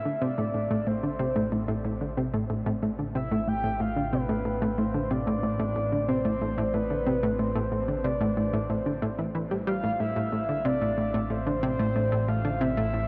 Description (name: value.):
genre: ambient, sequencer-driven space music.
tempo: 92 BPM.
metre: 4/4.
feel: straight.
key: A minor.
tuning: A4 = 439 Hz.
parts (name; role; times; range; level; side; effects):
soft octave-layered synth lead; melody; 0.0-13.1 s; B4 to G5; -33 LUFS; equal; chorus, tape echo.
fat analog bass; bass; 0.0-13.1 s; A1; -38 LUFS; equal; none.
analog pluck; riff; 0.1-13.1 s; A2 to G3; -30 LUFS; equal; chorus, tape echo.
room: wet huge ambient reverb, RT60 7.7 s.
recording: worn, warbling old tape, cassette tape, warbly pitch drift.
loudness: -28 LUFS.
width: mono.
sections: 0.0-13.1 A section.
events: none.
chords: 0.0 Am.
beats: 0.22 0.87 1.52 | 2.17 2.83 3.48 4.13 | 4.78 5.43 6.09 6.74 | 7.39 8.04 8.70 9.35 | 10.00 10.65 11.30 11.96 | 12.61.